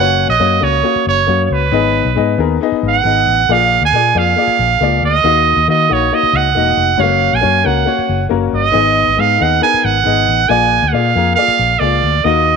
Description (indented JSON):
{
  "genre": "uptempo 1960s-style soul",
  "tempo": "137 BPM",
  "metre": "4/4",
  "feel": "straight",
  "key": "unclear",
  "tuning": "A4 = 443 Hz",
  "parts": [
    { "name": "bright trumpet", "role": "melody", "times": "0.0-12.6 s", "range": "B4 to G#5", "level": "-13 LUFS", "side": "right 9 dB", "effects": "none" },
    { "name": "warm upright piano", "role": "accompaniment", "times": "0.0-12.6 s", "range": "G#3 to F#5", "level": "-17 LUFS", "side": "left 14 dB", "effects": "none" },
    { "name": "vintage muted fingered electric bass", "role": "bass", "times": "0.0-12.5 s", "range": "E1 to D#3", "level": "-18 LUFS", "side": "left 2 dB", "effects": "none" }
  ],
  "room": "moderate spring reverb, RT60 2.6 s",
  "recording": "1960s-style stereo with parts hard left and right",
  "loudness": "-11 LUFS",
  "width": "side -5 dB against mid",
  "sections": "0.0-12.6 A section",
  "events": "none",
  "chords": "0.0 F#; 1.7 G#m; 3.5 A#7; 5.2 D#m; 7.0 F#; 8.8 G#m; 10.5 A#7"
}